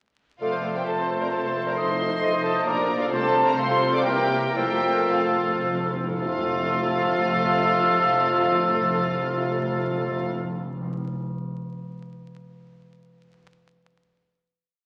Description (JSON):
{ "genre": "quick classical-period movement for symphony orchestra", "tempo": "105-135 BPM", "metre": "3/4", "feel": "rubato", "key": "F major", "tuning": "A4 = 443 Hz", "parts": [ { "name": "warm symphonic violin section", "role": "melody", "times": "0.4-10.3 s", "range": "F5 to D6", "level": "-31 LUFS", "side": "equal", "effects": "none" }, { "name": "bright clarinet", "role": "second line", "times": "0.4-10.3 s", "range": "F4 to Eb5", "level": "-37 LUFS", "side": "equal", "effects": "none" }, { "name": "hollow flute section", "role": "second line", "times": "0.4-10.3 s", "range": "A4 to F5", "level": "-35 LUFS", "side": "equal", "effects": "none" }, { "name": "warm chamber violin section", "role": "second line", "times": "0.4-10.3 s", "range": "F4 to D5", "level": "-34 LUFS", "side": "equal", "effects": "none" }, { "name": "warm oboe", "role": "second line", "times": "0.4-10.3 s", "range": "A4 to Eb5", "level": "-29 LUFS", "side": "equal", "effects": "none" }, { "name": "dark chamber viola section", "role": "accompaniment", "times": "0.4-10.3 s", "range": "A3 to C5", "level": "-33 LUFS", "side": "equal", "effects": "none" }, { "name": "mellow bassoon", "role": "accompaniment", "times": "0.4-10.3 s", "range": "C3 to A3", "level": "-33 LUFS", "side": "equal", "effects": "none" }, { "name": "mellow French horn section", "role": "sustained chords", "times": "0.4-10.3 s", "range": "A3 to F4", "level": "-34 LUFS", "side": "equal", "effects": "none" }, { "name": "dark chamber double bass section", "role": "bass", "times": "0.4-10.3 s", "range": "F1 to C2", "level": "-42 LUFS", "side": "equal", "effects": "none" }, { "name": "warm studio cello section", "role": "bass", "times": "0.4-10.3 s", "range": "F2 to C3", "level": "-37 LUFS", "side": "equal", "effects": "none" }, { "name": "timpani", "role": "percussion", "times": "1.8-11.0 s", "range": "F2 to C3", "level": "-36 LUFS", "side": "equal", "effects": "none" } ], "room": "wet scoring stage reverb, RT60 1.6 s", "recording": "very old 78 rpm record, vinyl crackle", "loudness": "-24 LUFS", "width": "mono", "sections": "0.4-6.2 A section; 6.2-9.5 final chord", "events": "slowing down 2.4-6.2; timpani fill 4.6-6.2", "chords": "0.4 F; 1.8 F7; 2.7 Bb; 3.1 F/C; 4.1 C7; 4.6 F" }